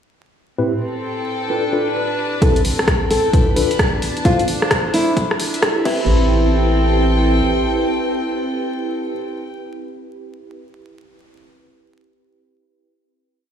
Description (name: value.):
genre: UK garage, two-step garage.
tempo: 131 BPM.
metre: 4/4.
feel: swing 63% on 16ths.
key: A minor.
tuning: A4 = 440 Hz.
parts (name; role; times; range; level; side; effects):
ethereal airy pad; sustained chords; 1.0-9.1 s; C4 to B4; -26 LUFS; right 3 dB; ensemble chorus, built-in reverb, sidechain pumping.
mellow tine electric piano; stabs; 0.6-9.1 s; A2 to C5; -22 LUFS; equal; medium stereo tremolo, low-pass filter, tape echo.
punchy analog drum machine; drums; 0.6-6.0 s; crash cymbal, hi-hat, rim click; -21 LUFS; equal; low-pass filter on hats, low-pass filter on snare, low-pass filter on cymbals.
rich chamber string section; texture; 0.6-9.5 s; C4 to A5; -23 LUFS; left 1 dB; sidechain pumping.
nylon-string guitar; melody; 2.4-9.1 s; E4 to A4; -22 LUFS; left 1 dB; ping-pong delay.
rubbery square bass; bass; 2.4-7.4 s; G1 to D2; -18 LUFS; equal; high-pass filter.
electronic kick drum; drums; 2.4-6.0 s; none; -19 LUFS; equal; none.
room: light reverb.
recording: played on a big sound system in a bare room, large studio reverb, vinyl crackle, high-pass filter.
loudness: -15 LUFS.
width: side -8 dB against mid.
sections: 0.6-2.4 intro; 2.4-6.1 build; 6.1-9.7 final note.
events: filter sweep on ambient pad 0.6-2.4, 2.4-6.1; build-up 2.4-6.1; filter sweep 2.4-6.1.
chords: 0.6 Am7; 1.5 Bm7b5; 2.4 Am7; 3.3 Bm7b5; 4.3 Dm7; 5.2 Cmaj9; 5.9 Am7.